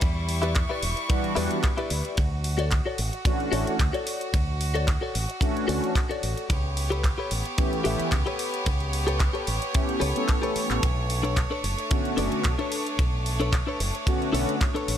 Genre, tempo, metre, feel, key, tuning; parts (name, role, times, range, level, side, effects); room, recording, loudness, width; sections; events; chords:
nu-disco, nu disco; 111 BPM; 4/4; swing 54% on 16ths; B minor; A4 = 440 Hz
bright chamber violin section; sustained chords; 0.0-15.0 s; G3 to C#6; -32 LUFS; right 1 dB; sidechain pumping
fingered electric bass with an envelope filter; bass; 0.0-15.0 s; E1 to E2; -28 LUFS; equal; tube saturation, sidechain pumping
kick drum; drums; 0.0-14.7 s; -25 LUFS; equal
pop drum kit; drums; 0.0-15.0 s; handclaps, hi-hat, ride cymbal; -34 LUFS; equal; overdrive
direct-recorded clean electric guitar; riff; 0.4-15.0 s; D4 to E5; -30 LUFS; left 3 dB; analog chorus, tape echo
mellow synth brass; accompaniment; 1.1-14.6 s; D3 to A4; -29 LUFS; equal; chorus, sidechain pumping, tape echo
studio reverb; -23 LUFS; side -10 dB against mid
0.0-15.0 A section
drum fill 10.3-10.8
0.0 Em7; 2.2 Dmaj7; 6.5 A9; 10.8 Bm9